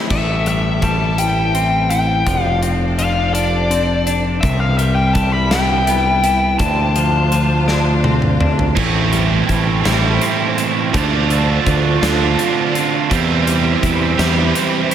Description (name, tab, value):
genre	post-rock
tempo	55 BPM (dotted quarters)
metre	6/8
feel	straight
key	A minor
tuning	A4 = 440 Hz
part	clear studio string section	sustained chords	0.0-14.9 s	C3 to B5	-26 LUFS	left 1 dB	none
part	twelve-string electric guitar	arpeggios	0.0-14.9 s	E2 to F4	-22 LUFS	left 2 dB	tape echo
part	bluesy overdriven lead guitar	melody	0.1-8.0 s	D5 to B5	-19 LUFS	left 2 dB	distortion, tape echo
part	growling fingered electric bass	bass	0.1-14.5 s	F1 to E2	-18 LUFS	equal	overdrive
part	huge arena drum kit	drums	0.1-14.9 s	crash cymbal, hi-hat, kick drum, snare drum, toms	-22 LUFS	equal	none
part	cranked stack guitar	riff	8.8-14.9 s	A2 to G4	-17 LUFS	right 8 dB	overdrive, wide subtle chorus
room	wet lush hall reverb, RT60 2.2 s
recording	dreamy mix soaked in reverb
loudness	-13 LUFS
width	side -9 dB against mid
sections	0.1-8.8 A section; 8.8-14.9 B section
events	drum fill 7.7-8.8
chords	0.1 Am7; 2.3 F6; 4.4 Cmaj7; 6.6 Dm7; 8.8 Am7; 10.9 Dm7; 13.1 Cmaj7/E